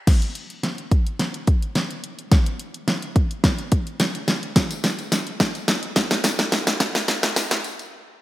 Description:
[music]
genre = pop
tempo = 107 BPM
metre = 4/4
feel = straight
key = none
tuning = none
[part]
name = pop drum kit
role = drums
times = 0.1-7.9 s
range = crash cymbal, hi-hat, kick drum, snare drum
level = -19 LUFS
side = equal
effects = gated reverb
[part]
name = tambourine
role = percussion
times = 4.7-7.9 s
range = none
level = -35 LUFS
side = left 4 dB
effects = none
[sound]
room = light reverb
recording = bright 1980s-style digital production, high-pass filter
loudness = -20 LUFS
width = side -16 dB against mid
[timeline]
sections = 0.1-8.2 A section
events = build-up 0.1-8.2; drum fill 0.1-7.9; filter sweep 0.1-8.2; break 7.9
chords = none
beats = | 0.07 0.64 1.20 1.76 | 2.32 2.88 3.44 4.00 | 4.56 5.12 5.68 6.24 | 6.80 7.36

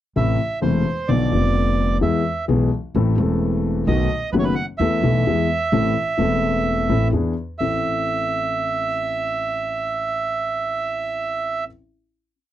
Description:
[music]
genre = tango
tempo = 129 BPM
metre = 4/4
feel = rubato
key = A harmonic minor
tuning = A4 = 441 Hz
[part]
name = bandoneon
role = melody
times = 0.2-11.6 s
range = B4 to F#5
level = -23 LUFS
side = right 4 dB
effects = none
[part]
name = warm concert grand piano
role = accompaniment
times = 0.2-11.7 s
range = E1 to A4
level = -22 LUFS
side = left 4 dB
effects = none
[part]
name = upright bass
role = bass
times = 0.2-7.8 s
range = E1 to E2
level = -23 LUFS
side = right 2 dB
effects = none
[sound]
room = light reverb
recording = dry, close 1970s-style studio recording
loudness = -18 LUFS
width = side -12 dB against mid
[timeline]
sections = 0.2-7.6 A section; 7.6-11.3 final chord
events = none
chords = 0.2 Am; 1.1 Bdim; 2.0 E; 2.9 Am; 3.9 B7; 4.8 Esus4; 5.3 E; 5.7 Am; 7.1 E7; 7.6 Am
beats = | 0.16 0.62 1.09 1.56 | 2.02 2.48 2.94 3.41 | 3.87 4.33 4.79 5.25 | 5.72 6.18 6.65 7.13 | 7.60 8.07 8.54 9.00 | 9.46 9.93 10.40 10.87

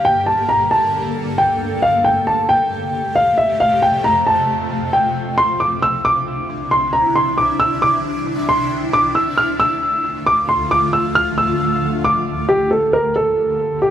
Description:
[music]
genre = hip hop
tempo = 135 BPM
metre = 4/4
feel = half-time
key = G dorian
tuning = A4 = 441 Hz
[part]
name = dark concert grand piano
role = melody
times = 0.0-13.9 s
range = G4 to F6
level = -15 LUFS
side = equal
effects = tape echo
[part]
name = granular cloud pad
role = sustained chords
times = 0.0-13.9 s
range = C2 to A4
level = -22 LUFS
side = equal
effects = built-in reverb
[sound]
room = light reverb, small room ambience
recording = dry, gritty hardware recording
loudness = -14 LUFS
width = side -10 dB against mid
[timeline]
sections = 0.0-12.5 A section; 12.5-13.9 B section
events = none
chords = 0.0 Gm; 1.8 Fadd9; 5.4 Cadd9; 8.9 Dm; 12.5 Gm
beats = | 0.04 0.49 0.93 1.38 | 1.82 2.27 2.71 3.15 | 3.60 4.04 4.49 4.93 | 5.38 5.82 6.27 6.71 | 7.16 7.60 8.04 8.49 | 8.93 9.38 9.82 10.27 | 10.71 11.15 11.60 12.04 | 12.49 12.93 13.38 13.82

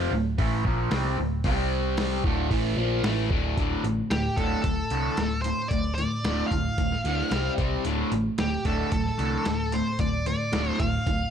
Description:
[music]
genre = hard rock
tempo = 112 BPM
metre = 4/4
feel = straight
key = D minor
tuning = A4 = 440 Hz
[part]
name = cranked stack guitar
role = riff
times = 0.0-11.3 s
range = D2 to C4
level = -27 LUFS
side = equal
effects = overdrive, phaser
[part]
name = hollow-body short-scale picked electric bass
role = bass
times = 0.0-11.2 s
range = D1 to D2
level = -29 LUFS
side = equal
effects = none
[part]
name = dusty soul sampler-style drum kit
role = drums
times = 0.4-11.2 s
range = hi-hat, kick drum, snare drum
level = -30 LUFS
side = equal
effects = none
[part]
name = high-gain lead guitar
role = melody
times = 4.1-11.3 s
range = G4 to F5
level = -30 LUFS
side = equal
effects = distortion, slapback echo
[sound]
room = light reverb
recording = none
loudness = -24 LUFS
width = side -8 dB against mid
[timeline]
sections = 0.0-3.6 A section; 3.6-11.3 B section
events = none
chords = 0.0 Dm; 1.4 C5; 2.2 Dm; 7.3 C5; 7.8 D5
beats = 0.38 0.91 | 1.44 1.97 2.51 3.04 | 3.57 4.11 4.64 5.17 | 5.71 6.24 6.78 7.31 | 7.85 8.38 8.92 9.46 | 9.99 10.53 11.07

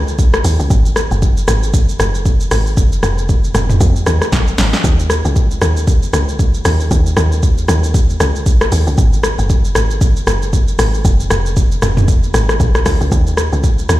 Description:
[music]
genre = amapiano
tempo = 116 BPM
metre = 4/4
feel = swing 58% on 16ths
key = Eb minor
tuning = A4 = 440 Hz
[part]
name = woody log drum bass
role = bass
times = 0.0-14.0 s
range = F1 to F2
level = -15 LUFS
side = equal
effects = none
[part]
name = deep house drum kit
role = drums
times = 0.1-14.0 s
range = hi-hat, kick drum, rim click, shaker, snare drum, toms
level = -13 LUFS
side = equal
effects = none
[sound]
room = little or no reverb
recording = played on a big sound system in a bare room, stone room reverb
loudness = -11 LUFS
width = side -16 dB against mid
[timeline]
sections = 0.0-14.0 A section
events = drum fill 4.3-4.8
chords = none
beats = 0.19 | 0.70 1.22 1.74 2.25 | 2.77 3.29 3.81 4.32 | 4.84 5.36 5.88 6.39 | 6.91 7.43 7.94 8.46 | 8.98 9.50 10.01 10.53 | 11.05 11.56 12.08 12.60 | 13.12 13.63

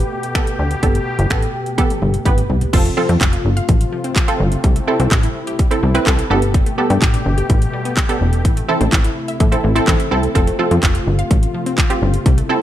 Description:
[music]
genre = dance-pop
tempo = 126 BPM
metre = 4/4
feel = straight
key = unclear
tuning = A4 = 440 Hz
[part]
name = wide unison pluck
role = accompaniment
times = 0.0-12.6 s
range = B3 to B4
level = -20 LUFS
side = right 2 dB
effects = sidechain pumping
[part]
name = sweeping resonant pad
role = sustained chords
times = 0.0-12.6 s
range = B2 to G4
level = -25 LUFS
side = left 2 dB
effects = chorus, sidechain pumping
[part]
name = plucky analog bass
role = bass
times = 0.0-12.4 s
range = E1 to A2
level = -17 LUFS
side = equal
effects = sidechain pumping
[part]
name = house drum kit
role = drums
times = 0.0-12.5 s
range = crash cymbal, finger snaps, handclaps, hi-hat, kick drum, toms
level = -16 LUFS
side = equal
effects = none
[part]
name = wide unison pluck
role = arpeggios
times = 2.7-12.6 s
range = E3 to F5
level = -26 LUFS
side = left 3 dB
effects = auto-pan, sidechain pumping, tape echo
[sound]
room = light reverb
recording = none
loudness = -14 LUFS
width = side -12 dB against mid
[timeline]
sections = 0.0-2.7 A section; 2.7-12.6 B section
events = drum fill 1.8-2.7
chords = 0.0 Gadd9; 2.7 F; 4.6 C6; 6.3 Gadd9; 8.4 Am; 10.4 F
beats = 0.35 | 0.83 1.31 1.78 2.26 | 2.73 3.21 3.69 4.16 | 4.64 5.12 5.59 6.07 | 6.54 7.02 7.50 7.97 | 8.45 8.93 9.40 9.88 | 10.35 10.83 11.31 11.78 | 12.26

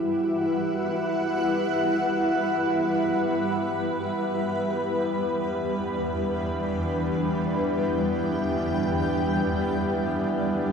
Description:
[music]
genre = ambient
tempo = free time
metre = none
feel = none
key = unclear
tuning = A4 = 442 Hz
[part]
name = granular cloud pad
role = sustained chords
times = 0.0-10.7 s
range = E2 to G5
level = -24 LUFS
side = equal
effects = built-in reverb
[part]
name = pedal harmonium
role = drone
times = 0.0-10.7 s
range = E3 to B3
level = -33 LUFS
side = equal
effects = none
[sound]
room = wet plate reverb, RT60 2.5 s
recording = dreamy mix soaked in reverb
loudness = -23 LUFS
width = side -6 dB against mid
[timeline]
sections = 0.0-10.7 A section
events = fade-in on harmonium 0.0-10.7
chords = 0.0 Emadd9; 4.6 G/E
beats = free time

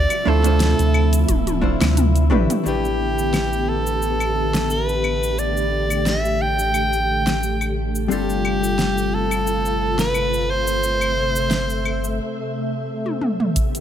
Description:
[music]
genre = sunset chillout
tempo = 88 BPM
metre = 4/4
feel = swing 54% on 16ths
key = A minor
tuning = A4 = 440 Hz
[part]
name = bright soprano saxophone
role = melody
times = 0.0-12.2 s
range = G4 to G5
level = -23 LUFS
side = equal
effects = tape echo
[part]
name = soft string machine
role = sustained chords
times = 0.0-13.8 s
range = C3 to E5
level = -26 LUFS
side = equal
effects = ensemble chorus
[part]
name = warm sub bass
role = bass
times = 0.0-12.2 s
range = D1 to D2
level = -22 LUFS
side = equal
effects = none
[part]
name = deep house drum kit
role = drums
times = 0.1-13.8 s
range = claves, hi-hat, shaker, snare drum, toms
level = -24 LUFS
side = equal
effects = overdrive
[part]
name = vintage hollow-body jazz guitar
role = accompaniment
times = 0.3-12.2 s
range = G3 to C5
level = -25 LUFS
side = moving between left 7 dB and right 8 dB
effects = auto-pan, tape echo
[part]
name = electronic kick drum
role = drums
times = 1.3-1.8, 13.6-13.7 s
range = none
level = -22 LUFS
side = equal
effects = none
[sound]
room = light reverb, digital ambience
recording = none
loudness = -18 LUFS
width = side -10 dB against mid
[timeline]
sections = 0.0-2.7 A section; 2.7-13.6 B section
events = drum fill 1.3-2.7, 13.1-13.6; filter sweep on string machine 2.7-13.6; break 12.2-13.6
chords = 0.0 Dm9; 2.7 A9sus4; 8.1 G9sus4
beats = 0.61 1.29 1.97 | 2.65 3.34 4.02 4.70 | 5.38 6.06 6.75 7.43 | 8.11 8.79 9.47 10.15 | 10.84 11.52 12.20 12.88 | 13.56

